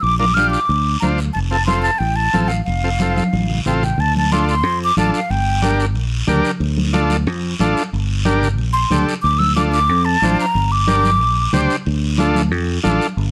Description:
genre	latin, cumbia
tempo	183 BPM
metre	4/4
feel	straight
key	unclear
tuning	A4 = 440 Hz
part	breathy mellow concert flute	melody	0.0-5.8, 8.7-11.7 s	F5 to F6	-20 LUFS	equal	none
part	fingered electric bass	bass	0.0-13.3 s	F1 to F2	-21 LUFS	equal	none
part	congas	percussion	0.0-13.3 s	none	-25 LUFS	equal	none
part	guiro	percussion	0.0-13.3 s	none	-33 LUFS	equal	none
part	combo organ	accompaniment	0.2-13.1 s	C4 to C5	-23 LUFS	equal	none
room	light reverb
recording	close, detailed microphones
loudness	-17 LUFS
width	mono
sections	0.0-4.0 A section; 4.0-13.3 B section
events	drum fill 3.2-4.0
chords	0.0 Bb; 1.4 F; 4.0 Dm; 5.3 Gm; 6.6 Dm; 7.9 Gm; 9.2 Dm; 10.5 Gm; 11.9 Dm

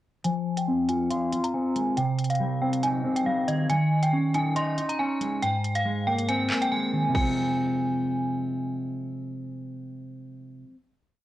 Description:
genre	hip hop, drill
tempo	139 BPM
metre	4/4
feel	half-time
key	F minor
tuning	A4 = 439 Hz
part	metallic FM bell	melody	0.2-8.4 s	Eb5 to C6	-28 LUFS	equal	chorus, phaser, low-pass filter
part	mellow electric guitar	accompaniment	0.2-10.8 s	Ab2 to F5	-26 LUFS	equal	low-pass filter
part	drill drum kit	drums	0.2-7.3 s	crash cymbal, handclaps, hi-hat, kick drum	-32 LUFS	equal	none
room	moderate studio ambience, RT60 0.5 s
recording	worn, warbling old tape, cassette tape, warbly pitch drift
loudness	-24 LUFS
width	side -14 dB against mid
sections	0.2-7.2 breakdown; 7.2-10.6 final chord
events	filter sweep 0.2-7.2; drums muted 6.7-7.2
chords	0.2 Fm; 2.0 Cm; 3.7 Dbsus2; 5.4 Abadd9; 7.2 Fm

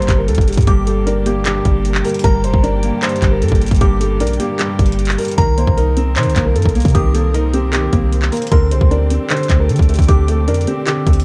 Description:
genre	hip hop, trap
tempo	153 BPM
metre	4/4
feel	half-time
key	G minor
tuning	A4 = 439 Hz
part	felt-muted upright piano	melody	0.0-11.2 s	G4 to C5	-24 LUFS	equal	none
part	delicate synth tine bell	second line	0.0-10.8 s	Bb5 to Eb6	-30 LUFS	equal	chorus, analog delay
part	clear baby grand piano	accompaniment	0.0-11.2 s	G2 to Eb4	-23 LUFS	equal	none
part	warm studio string section	sustained chords	0.0-11.2 s	D3 to Bb4	-30 LUFS	equal	none
part	warm 808-style bass	bass	0.0-11.2 s	F1 to D3	-18 LUFS	equal	none
part	trap drum kit	drums	0.0-11.2 s	handclaps, hi-hat, kick drum	-19 LUFS	equal	none
room	small room ambience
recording	dark, warm production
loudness	-15 LUFS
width	mono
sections	0.0-11.2 A section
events	none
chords	0.0 Gm; 5.4 Cm7; 8.5 D7sus4

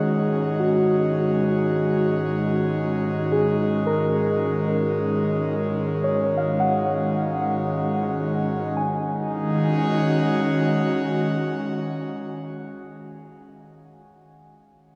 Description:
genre	ambient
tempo	55 BPM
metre	4/4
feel	straight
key	unclear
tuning	A4 = 440 Hz
part	airy breathy pad	sustained chords	0.0-13.5 s	G#2 to F#4	-25 LUFS	equal	chorus
part	muted felt-like synth keys	arpeggios	0.0-15.0 s	F#4 to G#5	-28 LUFS	equal	chorus, tape echo
room	wet cathedral reverb, RT60 5.3 s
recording	studio reverb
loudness	-23 LUFS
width	mono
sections	0.0-8.8 A section; 8.8-13.1 B section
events	none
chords	0.0 D#m7/G#; 8.8 G#5

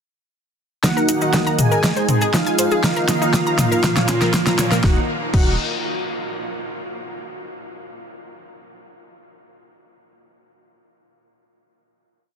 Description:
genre	melodic techno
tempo	120 BPM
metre	4/4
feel	straight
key	Eb minor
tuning	A4 = 440 Hz
part	fat analog lead	melody	0.8-5.5 s	F4 to Ab4	-26 LUFS	left 1 dB	sidechain pumping, ping-pong delay
part	soft supersaw	second line	0.8-5.5 s	F5 to Ab5	-29 LUFS	right 1 dB	vintage 12-bit sampler grit, sidechain pumping, digital delay
part	analog pluck	arpeggios	0.8-5.6 s	C4 to Eb6	-26 LUFS	left 1 dB	chorus, sidechain pumping, digital delay
part	brassy analog pad	stabs	0.8-5.5 s	Bb2 to Ab4	-23 LUFS	right 2 dB	wide subtle chorus, sidechain pumping, digital delay
part	deep house drum kit	drums	0.8-5.4 s	crash cymbal, hi-hat, snare drum, toms	-21 LUFS	left 1 dB	none
part	electronic kick drum	drums	0.8-5.4 s	none	-20 LUFS	equal	high-pass filter on kick
part	cabasa	percussion	0.8-4.8 s	none	-30 LUFS	left 3 dB	none
part	round analog bass	bass	1.1-5.6 s	Eb1 to Bb2	-30 LUFS	equal	none
room	light reverb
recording	dense, heavily limited modern master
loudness	-16 LUFS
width	side -7 dB against mid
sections	0.8-4.8 build; 4.8-6.8 final chord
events	build-up 0.8-4.8; drum fill 0.8-4.8; filter sweep on analog synth lead 0.8-4.8; filter sweep on analog synth pad 0.8-4.8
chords	0.8 Ebm; 1.8 Ab; 2.8 Eb5; 3.8 Bbm; 4.8 Eb5

